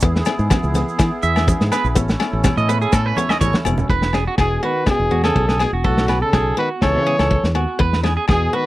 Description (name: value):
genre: highlife guitar band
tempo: 123 BPM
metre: 4/4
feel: swing 53% on 16ths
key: E major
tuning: A4 = 441 Hz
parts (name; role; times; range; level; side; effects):
- picked steel-string acoustic guitar; accompaniment; 0.0-8.7 s; B3 to C#4; -27 LUFS; left 4 dB; none
- accordion; sustained chords; 0.0-3.9 s; B3 to A4; -27 LUFS; right 2 dB; light tremolo tuning
- fingered electric bass; bass; 0.0-8.5 s; E1 to E3; -20 LUFS; equal; none
- warm soul drum kit; drums; 0.0-8.4 s; kick drum, snare drum; -19 LUFS; equal; none
- congas; percussion; 0.0-3.9 s; none; -25 LUFS; right 2 dB; none
- maracas; percussion; 0.0-3.8 s; none; -34 LUFS; right 9 dB; none
- agogo bells; percussion; 0.3-8.4 s; none; -28 LUFS; left 8 dB; none
- electric guitar at the edge of break-up; arpeggios; 1.2-8.7 s; F#4 to E5; -22 LUFS; right 5 dB; slapback echo
- clear trumpet; melody; 4.4-8.7 s; F#4 to C#5; -20 LUFS; left 2 dB; none
- breathy trombone; second line; 4.4-8.7 s; A2 to E3; -27 LUFS; right 3 dB; none
room: little or no reverb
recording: dry, close 1970s-style studio recording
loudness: -15 LUFS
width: side -16 dB against mid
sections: 0.0-3.9 A section; 3.9-8.7 B section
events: clean electric guitar solo 0.0-3.9; drum fill 3.3-3.9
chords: 0.0 E; 2.0 A; 3.9 E; 5.8 B5; 6.8 A/C#; 7.8 E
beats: | 0.03 0.51 1.00 1.48 | 1.96 2.45 2.93 3.42 | 3.90 4.39 4.88 5.36 | 5.85 6.34 6.82 7.31 | 7.80 8.29